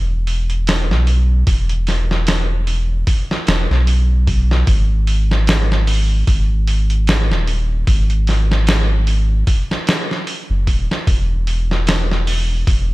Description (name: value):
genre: trip hop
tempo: 75 BPM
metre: 4/4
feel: swing 56% on 16ths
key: unclear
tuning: A4 = 440 Hz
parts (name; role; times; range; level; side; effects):
- soft dub sub bass; bass; 0.0-12.9 s; D#1 to B1; -15 LUFS; equal; none
- trip hop sampler-style drum kit; drums; 0.3-12.9 s; hi-hat, kick drum, snare drum; -18 LUFS; equal; none
room: little or no reverb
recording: none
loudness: -14 LUFS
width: side -20 dB against mid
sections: 0.0-12.9 A section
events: none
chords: none